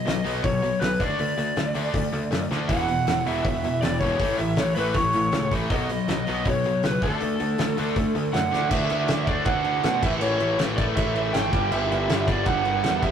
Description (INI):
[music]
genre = punk rock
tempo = 160 BPM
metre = 4/4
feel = straight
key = unclear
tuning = A4 = 442 Hz
[part]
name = lead guitar through a small cranked amp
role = melody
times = 0.0-13.1 s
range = A4 to G5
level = -26 LUFS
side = right 1 dB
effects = overdrive, tape echo
[part]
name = distorted electric guitar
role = riff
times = 0.0-13.1 s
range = E2 to D4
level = -31 LUFS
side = right 4 dB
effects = distortion
[part]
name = tight distorted guitar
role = riff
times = 0.0-13.1 s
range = E2 to D4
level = -30 LUFS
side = left 5 dB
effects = distortion
[part]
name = overdriven picked electric bass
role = bass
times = 0.1-13.1 s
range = E1 to B2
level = -30 LUFS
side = equal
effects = none
[part]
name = loose indie drum kit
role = drums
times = 0.1-13.1 s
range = crash cymbal, hi-hat, kick drum, snare drum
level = -27 LUFS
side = equal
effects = none
[part]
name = overdriven electric guitar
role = riff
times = 2.7-13.1 s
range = E2 to D4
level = -32 LUFS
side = equal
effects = none
[sound]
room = moderate booth ambience, RT60 0.2 s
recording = rough rehearsal-room recording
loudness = -21 LUFS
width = side -8 dB against mid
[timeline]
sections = 0.0-8.7 A section; 8.7-13.1 B section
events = drum fill 2.5, 8.5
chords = 0.0 B; 1.0 D5; 2.7 E5; 4.2 A; 5.7 B; 7.0 D; 10.0 A; 11.5 G5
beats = 0.07 0.45 0.82 | 1.20 1.57 1.95 2.33 | 2.70 3.08 3.45 3.83 | 4.21 4.58 4.96 5.33 | 5.71 6.09 6.46 6.84 | 7.21 7.59 7.97 8.34 | 8.72 9.09 9.47 9.85 | 10.22 10.60 10.97 11.35 | 11.72 12.10 12.47 12.85